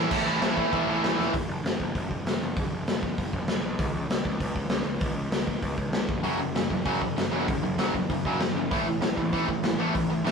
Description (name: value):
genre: punk rock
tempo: 195 BPM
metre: 4/4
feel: straight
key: unclear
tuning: A4 = 440 Hz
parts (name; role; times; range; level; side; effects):
- distorted electric guitar; riff; 0.0-1.3, 6.2-10.3 s; F#2 to A3; -27 LUFS; right 1 dB; overdrive
- high-gain distorted guitar; riff; 0.0-1.3 s; A2 to E4; -32 LUFS; right 2 dB; distortion
- fuzz picked electric bass; bass; 0.0-10.3 s; E#1 to C#2; -32 LUFS; equal; overdrive
- raw garage drum kit; drums; 0.1-10.3 s; crash cymbal, hi-hat, kick drum, snare drum; -28 LUFS; left 1 dB; none
room: light reverb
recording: rough rehearsal-room recording, warm saturation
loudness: -25 LUFS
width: side -5 dB against mid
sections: 0.1-1.3 A section; 1.3-10.3 B section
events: drum fill 1.2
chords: 0.1 A; 1.3 N.C.; 6.1 F#5; 8.7 A5